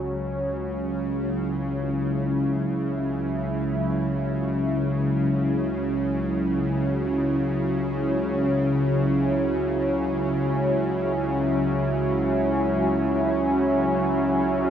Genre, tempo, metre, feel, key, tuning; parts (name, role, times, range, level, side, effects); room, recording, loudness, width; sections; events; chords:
dark ambient drone; free time; C# minor; A4 = 439 Hz
sweeping resonant pad; sustained chords; 0.0-14.7 s; F#3 to E4; -24 LUFS; right 1 dB; chorus
bowed-like drone; drone; 0.0-14.7 s; C#2 to C#3; -25 LUFS; left 1 dB; built-in reverb
wet huge ambient reverb, RT60 7.8 s; dark, warm production; -22 LUFS; side -9 dB against mid
0.0-14.7 A section
0.0 C#m